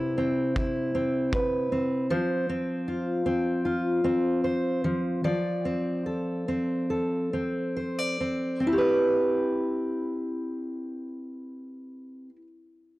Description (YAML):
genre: acoustic pop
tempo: 66-78 BPM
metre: 4/4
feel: straight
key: C major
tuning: A4 = 440 Hz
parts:
  - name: fingerpicked steel-string acoustic guitar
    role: accompaniment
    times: 0.0-12.5 s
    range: C3 to D5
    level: -25 LUFS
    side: equal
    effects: none
  - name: kick drum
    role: drums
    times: 0.6-1.5 s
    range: none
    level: -30 LUFS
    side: equal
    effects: vintage 12-bit sampler grit
room: light reverb, studio reverb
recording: cassette tape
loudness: -25 LUFS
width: side -18 dB against mid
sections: 0.0-8.7 A section; 8.7-12.3 B section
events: slowing down 2.1-8.7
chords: 0.0 Cmaj7; 2.1 F5; 4.8 Dm7/F; 8.7 Cmaj7